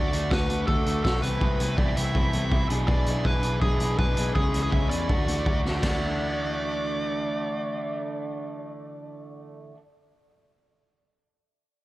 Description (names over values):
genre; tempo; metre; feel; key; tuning
indie rock; 163 BPM; 4/4; straight; D lydian; A4 = 440 Hz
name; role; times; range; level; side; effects
nasal lead guitar with a parked wah; melody; 0.0-9.5 s; G#4 to E5; -31 LUFS; equal; overdrive, tape echo
electric guitar at the edge of break-up; riff; 0.0-9.8 s; E3 to G#4; -34 LUFS; left 5 dB; none
overdriven electric guitar; riff; 0.0-9.8 s; B2 to F#4; -32 LUFS; right 4 dB; analog chorus
picked electric bass; bass; 0.0-9.7 s; B1 to E2; -29 LUFS; equal; none
raw garage drum kit; drums; 0.1-5.9 s; crash cymbal, hi-hat, kick drum, snare drum; -26 LUFS; equal; none
room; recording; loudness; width
small room reverb; dark, warm production; -23 LUFS; side -17 dB against mid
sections
0.0-5.8 A section; 5.8-8.8 B section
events
drum fill 5.6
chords
0.0 D; 1.2 Amadd9/C; 2.7 E7/B; 4.4 C#m7; 5.1 Dadd9